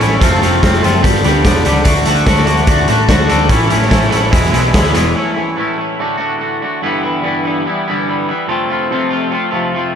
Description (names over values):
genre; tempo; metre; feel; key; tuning
indie rock; 145 BPM; 4/4; straight; unclear; A4 = 440 Hz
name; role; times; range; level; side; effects
twangy electric guitar; riff; 0.0-9.9 s; E2 to G4; -14 LUFS; left 1 dB; double-tracked left and right, analog delay
hollow-body short-scale picked electric bass; bass; 0.0-5.1 s; E1 to A2; -16 LUFS; equal; none
raw garage drum kit; drums; 0.0-5.0 s; hi-hat, kick drum, snare drum; -14 LUFS; equal; analog delay
room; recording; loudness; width
studio ambience; echo-heavy mix; -11 LUFS; side -8 dB against mid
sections
0.0-5.2 A section; 5.2-10.0 B section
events
none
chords
0.2 F; 1.0 G; 1.9 D; 3.5 A; 4.3 E; 5.2 A; 6.0 D/A; 6.8 G6; 8.5 F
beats
| 0.21 0.62 1.03 1.45 | 1.86 2.27 2.68 3.10 | 3.51 3.92 4.33 4.75 | 5.16 5.58 5.99 6.41 | 6.83 7.24 7.66 8.08 | 8.49 8.91 9.33 9.74